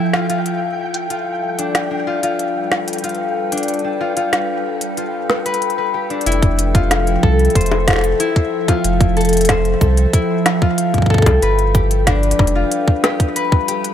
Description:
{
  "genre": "IDM",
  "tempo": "93 BPM",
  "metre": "4/4",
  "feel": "straight",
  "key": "F lydian",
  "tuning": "A4 = 439 Hz",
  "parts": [
    { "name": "glassy FM pad", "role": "sustained chords", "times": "0.0-13.9 s", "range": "F3 to G5", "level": "-23 LUFS", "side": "right 2 dB", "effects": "ensemble chorus, built-in reverb" },
    { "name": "concert harp", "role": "arpeggios", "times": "0.0-13.9 s", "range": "D4 to C5", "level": "-19 LUFS", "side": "left 4 dB", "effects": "ping-pong delay" },
    { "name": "flickering grainy texture", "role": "texture", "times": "0.0-6.3 s", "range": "G5", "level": "-29 LUFS", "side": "right 3 dB", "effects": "built-in reverb" },
    { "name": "organic electronic drum kit", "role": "drums", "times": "0.1-13.9 s", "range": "bongos, hi-hat, snare drum", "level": "-21 LUFS", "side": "left 1 dB", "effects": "none" },
    { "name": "warm sub bass", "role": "bass", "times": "6.3-12.6 s", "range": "F1 to C2", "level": "-17 LUFS", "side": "equal", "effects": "none" },
    { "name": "electronic kick drum", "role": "drums", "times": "6.4-13.7 s", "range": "none", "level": "-14 LUFS", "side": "equal", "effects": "none" }
  ],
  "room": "light reverb",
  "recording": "none",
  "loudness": "-14 LUFS",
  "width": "side -10 dB against mid",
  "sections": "0.0-6.3 A section; 6.3-13.9 B section",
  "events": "filter sweep on ambient pad 0.0-6.3",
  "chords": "0.0 Fmaj7; 1.1 G7; 6.3 Fmaj7; 11.4 G7"
}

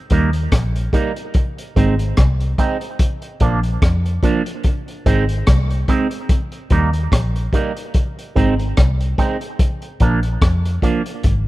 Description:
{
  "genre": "roots reggae",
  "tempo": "73 BPM",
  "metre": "4/4",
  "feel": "swing 57% on 16ths",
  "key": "Eb major",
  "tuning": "A4 = 439 Hz",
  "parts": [
    { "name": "electric guitar with an envelope filter", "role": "accompaniment", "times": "0.1-11.0 s", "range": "F3 to Eb4", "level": "-22 LUFS", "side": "right 4 dB", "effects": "phaser, tape echo" },
    { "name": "vintage muted fingered electric bass", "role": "bass", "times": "0.1-11.5 s", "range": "Ab1 to F2", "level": "-18 LUFS", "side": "equal", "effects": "none" },
    { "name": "crunchy breakbeat drum kit", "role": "drums", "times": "0.1-11.5 s", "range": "hi-hat, kick drum, rim click", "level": "-18 LUFS", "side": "equal", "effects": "none" }
  ],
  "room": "small room ambience",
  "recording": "rough home demo mix",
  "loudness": "-15 LUFS",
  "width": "side -18 dB against mid",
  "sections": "0.0-11.5 A section",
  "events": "none",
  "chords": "0.0 Eb; 1.3 Ab; 3.0 Bb; 4.6 Ab; 6.3 Eb; 7.9 Ab; 9.6 Bb"
}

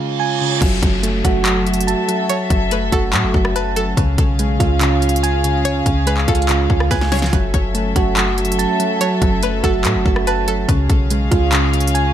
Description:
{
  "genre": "hip hop, trap",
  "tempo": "143 BPM",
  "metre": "4/4",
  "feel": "half-time",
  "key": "F# minor",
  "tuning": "A4 = 440 Hz",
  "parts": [
    { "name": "soft electric-piano-like synth keys", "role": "arpeggios", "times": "0.0-12.1 s", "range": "C#3 to A5", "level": "-19 LUFS", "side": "right 3 dB", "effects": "chorus, digital delay" },
    { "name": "reverse cymbal and downlifter", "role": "sound effects", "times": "0.0-4.0 s", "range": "none", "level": "-25 LUFS", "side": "right 3 dB", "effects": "none" },
    { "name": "warm studio string section", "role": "sustained chords", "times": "0.6-12.1 s", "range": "C#3 to E#5", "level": "-24 LUFS", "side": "left 2 dB", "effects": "none" },
    { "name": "clean 808-style bass", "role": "bass", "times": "0.6-12.1 s", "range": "F#1 to A2", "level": "-19 LUFS", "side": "left 1 dB", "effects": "none" },
    { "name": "trap drum kit", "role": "drums", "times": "0.6-12.0 s", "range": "crash cymbal, handclaps, hi-hat, kick drum, rim click, snare drum", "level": "-18 LUFS", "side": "equal", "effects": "none" },
    { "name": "string-like resonator pluck", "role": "second line", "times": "2.3-10.7 s", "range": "A4 to C#5", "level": "-25 LUFS", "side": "left 1 dB", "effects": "chorus, digital delay" }
  ],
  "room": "little or no reverb",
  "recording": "none",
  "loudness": "-14 LUFS",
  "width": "side -10 dB against mid",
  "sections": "0.6-12.1 A section",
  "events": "break 0.0-0.6; reverse cymbal 0.0-0.6; drum fill 6.9-7.3",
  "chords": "0.0 C#; 0.6 F#m7; 4.0 C#; 7.3 F#m7; 10.7 C#"
}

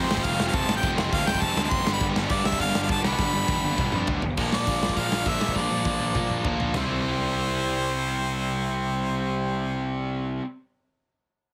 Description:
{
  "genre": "punk rock",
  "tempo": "203 BPM",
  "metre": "4/4",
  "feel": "straight",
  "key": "C major",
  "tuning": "A4 = 440 Hz",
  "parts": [
    { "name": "bright harmonica", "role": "melody", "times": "0.0-9.9 s", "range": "C5 to C6", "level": "-31 LUFS", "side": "equal", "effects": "none" },
    { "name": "biting overdriven guitar", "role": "riff", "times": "0.0-10.5 s", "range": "F2 to E4", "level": "-33 LUFS", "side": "equal", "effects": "none" },
    { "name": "tight distorted guitar", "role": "riff", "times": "0.0-10.5 s", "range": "F2 to C4", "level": "-34 LUFS", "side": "equal", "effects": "distortion" },
    { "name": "tight distorted guitar", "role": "riff", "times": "0.0-4.2 s", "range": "F2 to C4", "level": "-36 LUFS", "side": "equal", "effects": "none" },
    { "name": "fuzz picked electric bass", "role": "bass", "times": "0.0-10.4 s", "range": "F1 to G2", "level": "-32 LUFS", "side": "equal", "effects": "overdrive" },
    { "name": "big rock drum kit", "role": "drums", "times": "0.1-6.8 s", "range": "crash cymbal, hi-hat, kick drum, snare drum, toms", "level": "-30 LUFS", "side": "equal", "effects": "none" }
  ],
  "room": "little or no reverb",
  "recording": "heavily compressed radio sound",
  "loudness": "-25 LUFS",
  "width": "mono",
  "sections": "0.0-4.4 A section; 4.4-6.7 B section; 6.7-9.1 C section",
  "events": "drum fill 3.2-4.4, 5.6-6.7",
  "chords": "0.0 F; 1.9 G; 4.4 Bb; 6.7 C"
}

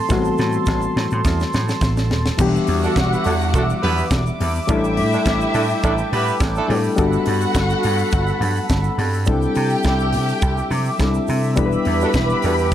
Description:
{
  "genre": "disco",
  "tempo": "105 BPM",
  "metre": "4/4",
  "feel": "straight",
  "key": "E minor",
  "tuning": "A4 = 440 Hz",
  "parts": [
    { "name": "barky reed electric piano", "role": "accompaniment", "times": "0.0-12.7 s", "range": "E3 to B4", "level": "-22 LUFS", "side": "left 4 dB", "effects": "overdrive" },
    { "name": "chorused pulse-width pad", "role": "sustained chords", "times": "0.0-12.7 s", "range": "G3 to D6", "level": "-25 LUFS", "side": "right 2 dB", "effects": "none" },
    { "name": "vintage slap bass", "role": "bass", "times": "0.1-12.7 s", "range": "D#1 to C3", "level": "-21 LUFS", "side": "right 1 dB", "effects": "none" },
    { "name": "tight funk drum kit", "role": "drums", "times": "0.1-12.7 s", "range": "crash cymbal, hi-hat, kick drum, snare drum", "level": "-24 LUFS", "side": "equal", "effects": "none" },
    { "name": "congas", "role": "percussion", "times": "0.1-12.3 s", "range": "none", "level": "-31 LUFS", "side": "left 3 dB", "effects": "none" },
    { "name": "tube shaker", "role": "percussion", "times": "0.1-12.7 s", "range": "none", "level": "-42 LUFS", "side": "right 13 dB", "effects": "none" },
    { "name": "warm studio string section", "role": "second line", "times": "2.4-12.7 s", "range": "E4 to B5", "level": "-25 LUFS", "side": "equal", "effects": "none" },
    { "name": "mellow horn section", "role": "stabs", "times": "2.8-6.8, 12.0-12.5 s", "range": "A3 to B4", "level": "-26 LUFS", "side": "right 3 dB", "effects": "tape echo" }
  ],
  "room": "light reverb, small room ambience",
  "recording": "none",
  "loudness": "-16 LUFS",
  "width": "side -11 dB against mid",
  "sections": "0.0-2.4 A section; 2.4-12.7 B section",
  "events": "drum fill 0.1-2.4",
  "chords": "0.0 Am7; 2.4 Em7; 4.7 A7sus4; 7.0 Gmaj9; 9.3 C69; 11.6 Em7"
}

